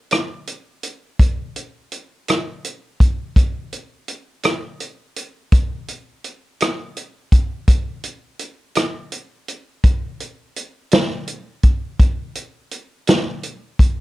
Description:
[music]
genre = blues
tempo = 56 BPM (dotted quarters)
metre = 12/8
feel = straight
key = none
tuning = none
[part]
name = vintage drum kit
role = drums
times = 0.1-14.0 s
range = hi-hat, kick drum, rim click, snare drum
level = -16 LUFS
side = equal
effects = none
[sound]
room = light reverb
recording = dark, warm production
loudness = -17 LUFS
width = side -18 dB against mid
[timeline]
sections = 0.0-14.0 A section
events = none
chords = none

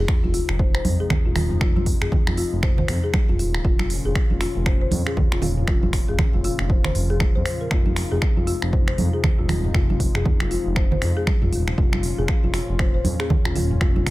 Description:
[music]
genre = afro house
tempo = 118 BPM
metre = 4/4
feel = swing 59% on 16ths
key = F minor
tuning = A4 = 439 Hz
[part]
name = warm analog pad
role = sustained chords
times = 0.0-14.1 s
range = Bb2 to F4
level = -31 LUFS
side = left 1 dB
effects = lush chorus, sidechain pumping
[part]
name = folk marimba with soft mallets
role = arpeggios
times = 0.0-14.1 s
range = F4 to C5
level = -28 LUFS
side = left 4 dB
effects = sidechain pumping, dub echo
[part]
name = smooth gliding synth bass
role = bass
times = 0.0-14.1 s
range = Eb1 to F2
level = -25 LUFS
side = equal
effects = sidechain pumping
[part]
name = sub drop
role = sound effects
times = 0.0-1.6 s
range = none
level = -32 LUFS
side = equal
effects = none
[part]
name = deep house drum kit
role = drums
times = 0.1-14.1 s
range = finger snaps, hi-hat, toms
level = -27 LUFS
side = equal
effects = none
[part]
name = electronic kick drum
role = drums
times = 0.1-14.1 s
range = none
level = -21 LUFS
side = equal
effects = none
[part]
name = congas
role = percussion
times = 0.2-14.0 s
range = none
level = -27 LUFS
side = right 3 dB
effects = none
[sound]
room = little or no reverb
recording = none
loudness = -18 LUFS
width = side -18 dB against mid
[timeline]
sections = 0.0-14.1 A section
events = impact 0.0-1.6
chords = 0.0 Fm7; 3.6 Bbm; 7.7 Fm7; 11.8 Bbm

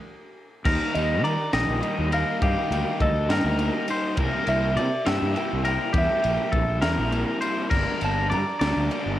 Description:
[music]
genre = math rock and midwest emo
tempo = 68 BPM (dotted quarters)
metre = 6/8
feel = straight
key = unclear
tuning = A4 = 440 Hz
[part]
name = crunchy overdriven guitar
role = riff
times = 0.6-9.2 s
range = C3 to E4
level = -29 LUFS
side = equal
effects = cassette tape
[part]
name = twangy electric guitar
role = arpeggios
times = 0.7-9.2 s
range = G4 to E5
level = -28 LUFS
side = left 3 dB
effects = cassette tape
[part]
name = fuzz fingered electric bass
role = bass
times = 0.7-9.2 s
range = G1 to Eb3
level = -26 LUFS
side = equal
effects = overdrive
[part]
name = crisp fusion drum kit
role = drums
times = 0.7-9.0 s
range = crash cymbal, kick drum, ride cymbal, snare drum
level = -29 LUFS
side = equal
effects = cassette tape
[part]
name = electric guitar through a small old amp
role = melody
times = 0.9-9.2 s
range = Eb5 to Bb5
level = -28 LUFS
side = right 1 dB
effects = cassette tape, analog delay
[sound]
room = small room ambience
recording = home recording on cassette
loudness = -21 LUFS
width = side -13 dB against mid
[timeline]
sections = 0.7-9.2 A section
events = stop 0.0-0.7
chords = 0.0 N.C.; 0.7 Ebmaj7; 4.2 C7; 7.7 Gm

